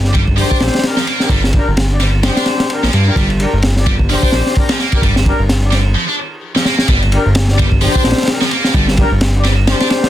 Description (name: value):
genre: breakbeat, breaks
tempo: 129 BPM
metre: 4/4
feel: swing 57% on 16ths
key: G minor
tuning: A4 = 438 Hz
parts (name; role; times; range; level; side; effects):
- dark brass ensemble; stabs; 0.0-10.1 s; D4 to D5; -20 LUFS; left 3 dB; ping-pong delay
- fat analog bass; bass; 0.0-9.7 s; G1 to G2; -14 LUFS; equal; none
- crunchy breakbeat drum kit; drums; 0.0-10.1 s; hi-hat, kick drum, ride cymbal, snare drum; -15 LUFS; equal; none
- heavy high-gain guitar; riff; 0.1-9.9 s; F3 to D4; -20 LUFS; right 2 dB; distortion, ping-pong delay
room: little or no reverb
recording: dense, heavily limited modern master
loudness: -11 LUFS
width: side -12 dB against mid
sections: 0.0-6.9 A section; 6.9-10.1 B section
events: break 6.0-6.9; drum fill 6.5-6.9; drop 6.9-10.1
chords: 0.0 Gm